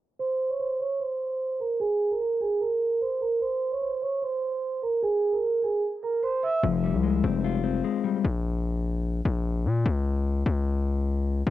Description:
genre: hip hop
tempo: 149 BPM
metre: 4/4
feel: half-time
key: F harmonic minor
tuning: A4 = 438 Hz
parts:
  - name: vibraphone with medium mallets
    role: melody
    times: 0.2-6.6 s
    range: Ab4 to E6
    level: -25 LUFS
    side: right 3 dB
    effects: low-pass filter, cassette tape
  - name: mellow electric guitar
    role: accompaniment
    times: 6.6-8.2 s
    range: F3 to F4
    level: -25 LUFS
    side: left 9 dB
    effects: low-pass filter, cassette tape
  - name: distorted 808-style bass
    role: bass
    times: 6.6-11.5 s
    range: F1 to Bb2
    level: -25 LUFS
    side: left 2 dB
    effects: distortion
room: little or no reverb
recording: home recording on cassette, low-pass filter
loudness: -24 LUFS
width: side -13 dB against mid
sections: 0.2-6.6 A section; 6.6-11.5 B section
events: filter sweep 0.2-6.6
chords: 0.2 Bbmadd9; 1.8 Abadd9; 3.4 Bbmadd9; 5.0 C; 6.6 Fmadd9; 8.2 N.C.

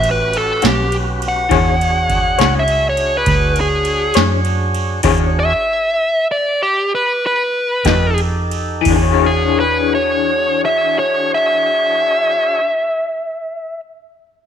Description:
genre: slow blues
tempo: 58-68 BPM (dotted quarters)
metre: 12/8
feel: straight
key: E mixolydian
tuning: A4 = 436 Hz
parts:
  - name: dark smooth lead guitar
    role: melody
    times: 0.0-13.8 s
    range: G4 to F#5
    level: -16 LUFS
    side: equal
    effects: overdrive
  - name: tonewheel organ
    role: sustained chords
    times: 0.0-12.6 s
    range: C#4 to C#5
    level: -23 LUFS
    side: equal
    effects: slow rotary speaker, overdrive
  - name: vintage muted fingered electric bass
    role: bass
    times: 0.0-12.6 s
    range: A1 to F#2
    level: -19 LUFS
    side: right 1 dB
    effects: none
  - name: booming analog drum machine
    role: drums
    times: 0.0-9.0 s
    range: crash cymbal, kick drum, ride cymbal, snare drum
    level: -21 LUFS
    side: right 3 dB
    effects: none
  - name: electric guitar through a small old amp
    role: accompaniment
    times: 0.6-12.8 s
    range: A2 to C#5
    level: -19 LUFS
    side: left 12 dB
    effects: tremolo
room: light reverb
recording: 1960s-style stereo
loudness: -13 LUFS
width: side -8 dB against mid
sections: 0.0-8.9 A section; 8.9-13.0 B section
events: lead electric guitar solo 0.0-8.9; slowing down 3.9-8.9; kick and snare drop out 6.9-8.9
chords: 0.0 A13; 1.5 E13; 7.9 F9; 8.9 E13

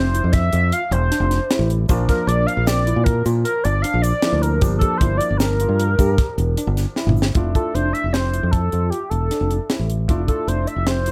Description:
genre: progressive instrumental, band music in an uneven meter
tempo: 154 BPM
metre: 7/4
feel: straight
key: F major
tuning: A4 = 443 Hz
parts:
  - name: lead with added fifth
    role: melody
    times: 0.0-11.1 s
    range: G4 to F5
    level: -25 LUFS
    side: equal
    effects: chorus
  - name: clear grand piano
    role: accompaniment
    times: 0.0-11.1 s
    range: F3 to E4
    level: -33 LUFS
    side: equal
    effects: none
  - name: tine electric piano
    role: arpeggios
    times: 0.0-11.1 s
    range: C4 to G4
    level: -30 LUFS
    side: equal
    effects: overdrive, phaser, tape echo
  - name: fingered electric bass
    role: bass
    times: 0.0-11.1 s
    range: E1 to Bb2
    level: -22 LUFS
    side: equal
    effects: none
  - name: tight funk drum kit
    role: drums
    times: 0.1-11.1 s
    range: hi-hat, kick drum, snare drum, toms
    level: -23 LUFS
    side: equal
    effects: none
  - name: egg shaker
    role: percussion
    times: 1.9-7.3 s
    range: none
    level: -42 LUFS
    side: equal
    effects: none
room: light reverb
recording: none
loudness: -19 LUFS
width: mono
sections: 0.0-7.4 A section; 7.4-11.1 B section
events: drum fill 7.0-7.4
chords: 0.0 Fmaj7; 1.9 Bb; 4.6 Gm; 7.4 Fmaj7

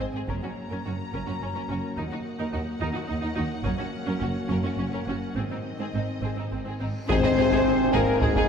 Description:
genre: cinematic, epic orchestral film score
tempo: 106 BPM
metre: 3/4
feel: straight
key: Ab mixolydian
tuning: A4 = 441 Hz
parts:
  - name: warm symphonic violin section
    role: melody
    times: 0.0-8.5 s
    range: Ab4 to Bb5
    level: -37 LUFS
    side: left 4 dB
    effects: none
  - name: warm symphonic violin section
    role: second line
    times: 0.0-8.4 s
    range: C4 to Eb5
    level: -36 LUFS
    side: left 1 dB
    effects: none
  - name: rich studio cello section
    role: bass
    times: 0.0-8.4 s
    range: Eb2 to Ab2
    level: -34 LUFS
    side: right 2 dB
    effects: none
  - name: rich symphonic double bass section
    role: bass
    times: 0.0-8.3 s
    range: Gb1 to Eb2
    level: -33 LUFS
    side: right 2 dB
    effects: none
  - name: rich symphonic viola section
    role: accompaniment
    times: 0.3-8.4 s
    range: C4 to Ab4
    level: -34 LUFS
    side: right 2 dB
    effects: none
  - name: dark French horn section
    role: sustained chords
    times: 0.3-8.5 s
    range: Eb3 to C4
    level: -29 LUFS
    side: left 2 dB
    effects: none
  - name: solo taiko drums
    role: drums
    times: 0.3-8.5 s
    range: none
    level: -30 LUFS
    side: equal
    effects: none
  - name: cymbal swell and tam-tam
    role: percussion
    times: 3.6-8.5 s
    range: none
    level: barely audible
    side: none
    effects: none
  - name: reverse cymbal and sub drop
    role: sound effects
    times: 6.9-8.5 s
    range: none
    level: -39 LUFS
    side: equal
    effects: none
  - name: silver concert flute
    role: second line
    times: 7.1-8.5 s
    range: Ab4 to C5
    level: -33 LUFS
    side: left 1 dB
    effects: none
  - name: clear trombone section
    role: sustained chords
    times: 7.1-8.5 s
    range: Ab2 to C3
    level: -33 LUFS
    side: right 3 dB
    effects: none
  - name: mellow woodwind section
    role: sustained chords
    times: 7.1-8.5 s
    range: C4 to Ab5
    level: -34 LUFS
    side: right 1 dB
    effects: none
  - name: mellow tuba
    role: bass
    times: 7.1-8.3 s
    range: Ab1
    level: -35 LUFS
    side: right 4 dB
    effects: none
  - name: timpani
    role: percussion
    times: 7.1-7.9 s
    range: Ab2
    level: -33 LUFS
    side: left 1 dB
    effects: none
room: wet concert hall reverb, RT60 2.5 s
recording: none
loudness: -24 LUFS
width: side -6 dB against mid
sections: 0.3-7.1 A section; 7.1-8.5 B section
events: reverse cymbal 6.9; band accent 7.1-7.7; impact 7.1-8.5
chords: 0.3 Gb; 2.0 Ebm; 3.7 Gb; 5.4 Ab

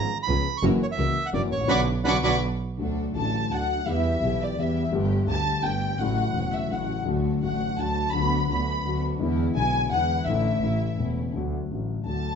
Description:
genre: tango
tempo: 168 BPM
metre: 3/4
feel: rubato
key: D major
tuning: A4 = 440 Hz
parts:
  - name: bandoneon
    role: melody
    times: 0.0-2.4 s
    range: C#5 to C#6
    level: -27 LUFS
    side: right 4 dB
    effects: plate reverb
  - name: warm concert grand piano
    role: accompaniment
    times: 0.0-12.4 s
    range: E1 to G#4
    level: -27 LUFS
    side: left 6 dB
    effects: none
  - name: warm studio string section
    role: stabs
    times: 0.0-11.3 s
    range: G#3 to B4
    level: -34 LUFS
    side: right 4 dB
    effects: none
  - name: clear double bass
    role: bass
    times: 0.0-12.4 s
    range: E1 to E2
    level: -28 LUFS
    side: right 4 dB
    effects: none
  - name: dark studio violin section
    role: second line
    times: 1.7-12.4 s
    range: D5 to D6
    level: -28 LUFS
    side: left 2 dB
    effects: none
room: moderate large studio reverb, RT60 0.8 s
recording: nothing above 7.9 kHz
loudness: -23 LUFS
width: side -6 dB against mid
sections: 0.0-2.8 A section; 2.8-11.3 B section; 11.3-12.4 B section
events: band accent 1.7-2.8; violin section solo 2.8-11.3, 11.3-12.4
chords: 0.0 C#7; 0.6 F#7; 1.7 Bmadd9; 2.8 D; 3.9 Em; 4.9 Gsus2; 6.0 A6; 7.1 D; 8.1 Bm/D; 9.2 E7; 10.3 Asus4; 10.6 A; 11.3 D

